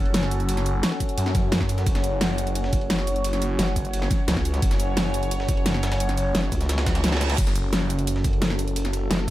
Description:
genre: dark technical drum and bass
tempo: 174 BPM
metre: 4/4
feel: straight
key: F# minor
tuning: A4 = 444 Hz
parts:
  - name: sweeping resonant pad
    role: sustained chords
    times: 0.0-9.3 s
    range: F#3 to C#5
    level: -29 LUFS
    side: equal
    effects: chorus, phaser, sidechain pumping
  - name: phased detuned saw bass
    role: bass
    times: 0.0-9.1 s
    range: F#1 to F#2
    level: -25 LUFS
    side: equal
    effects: phaser, sidechain pumping
  - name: breakbeat sampler-style drum kit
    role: drums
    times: 0.1-9.3 s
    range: ride cymbal, snare drum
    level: -35 LUFS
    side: equal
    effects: high-pass filter on cymbals, high-pass filter on snare
  - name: dubstep drum kit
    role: drums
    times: 0.1-9.3 s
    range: cabasa, crash cymbal, hi-hat, snare drum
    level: -26 LUFS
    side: equal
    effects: overdrive
  - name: electronic kick drum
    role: drums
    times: 1.0-9.3 s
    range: none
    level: -24 LUFS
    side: equal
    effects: overdrive
  - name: vowel-sweep wobble bass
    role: bass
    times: 3.6-9.3 s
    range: F#1 to C#2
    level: -24 LUFS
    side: equal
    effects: chorus
  - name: reverse cymbal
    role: sound effects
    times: 6.8-7.4 s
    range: none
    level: -31 LUFS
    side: right 5 dB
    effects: none
room: digital ambience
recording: none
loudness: -21 LUFS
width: side -15 dB against mid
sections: 0.0-9.3 A section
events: reverse cymbal 6.8-7.4; kick drops out 7.0-7.4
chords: 0.0 F#m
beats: 0.14 | 0.49 0.83 1.18 1.52 | 1.86 2.21 2.56 2.90 | 3.25 3.59 3.93 4.28 | 4.62 4.97 5.31 5.66 | 6.00 6.35 6.69 7.04 | 7.38 7.73 8.07 8.42 | 8.76 9.11

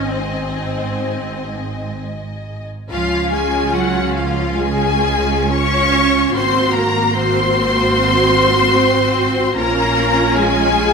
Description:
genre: classical, slow romantic movement for string orchestra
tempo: 61-77 BPM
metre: 4/4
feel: rubato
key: Db major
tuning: A4 = 440 Hz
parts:
  - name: warm symphonic violin section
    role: melody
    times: 0.0-10.9 s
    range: C5 to Db6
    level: -18 LUFS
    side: left 4 dB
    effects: none
  - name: clear symphonic violin section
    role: second line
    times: 0.0-10.9 s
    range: F4 to Ab5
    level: -22 LUFS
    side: left 4 dB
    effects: none
  - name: rich symphonic viola section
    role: accompaniment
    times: 0.0-10.9 s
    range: Bb3 to Gb4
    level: -20 LUFS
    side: right 1 dB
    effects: none
  - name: rich symphonic cello section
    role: bass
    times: 0.0-10.9 s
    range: Ab2 to Db4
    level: -23 LUFS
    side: right 6 dB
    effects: none
  - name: warm studio double bass section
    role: bass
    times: 0.0-10.9 s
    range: Ab1 to Db2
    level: -23 LUFS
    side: right 3 dB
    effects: none
room: moderate concert hall reverb, RT60 1.8 s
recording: none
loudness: -14 LUFS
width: side -5 dB against mid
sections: 0.0-2.9 A section; 2.9-10.9 B section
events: none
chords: 0.0 Ab; 2.9 Db; 6.4 Ab9; 9.6 Bbm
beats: 0.06 1.04 1.99 | 2.91 3.76 4.59 5.51 | 6.35 7.16 7.96 8.76 | 9.57 10.37

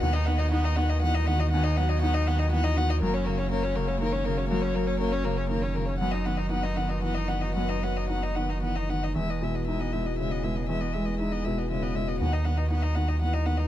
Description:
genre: neoclassical piano and strings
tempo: 120 BPM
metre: 3/4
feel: rubato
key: B major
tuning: A4 = 436 Hz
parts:
  - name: warm violin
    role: melody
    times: 0.0-13.7 s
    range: A#4 to F#5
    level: -32 LUFS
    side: left 4 dB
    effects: none
  - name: felt-muted upright piano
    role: accompaniment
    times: 0.0-13.7 s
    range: D#2 to D#4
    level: -30 LUFS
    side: left 1 dB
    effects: none
  - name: rich viola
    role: accompaniment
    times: 0.0-13.7 s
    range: G#3 to D#4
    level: -35 LUFS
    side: right 4 dB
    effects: none
  - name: warm studio string section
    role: sustained chords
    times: 0.0-13.7 s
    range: A#3 to D#5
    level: -38 LUFS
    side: left 2 dB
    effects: none
  - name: warm sub bass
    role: bass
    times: 0.0-13.7 s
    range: E1 to D#2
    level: -28 LUFS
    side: right 1 dB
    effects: none
room: little or no reverb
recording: close, detailed microphones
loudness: -24 LUFS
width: side -12 dB against mid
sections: 0.0-9.2 A section; 9.2-13.7 B section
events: none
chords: 0.0 B/D#; 3.0 F#; 6.0 B/F#; 9.2 Emaj7; 12.2 B/D#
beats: | 0.02 0.52 1.02 | 1.52 2.01 2.51 | 3.01 3.50 4.00 | 4.49 4.99 5.49 | 5.99 6.49 7.01 | 7.55 8.09 8.63 | 9.16 9.68 10.19 | 10.70 11.20 11.71 | 12.21 12.71 13.21

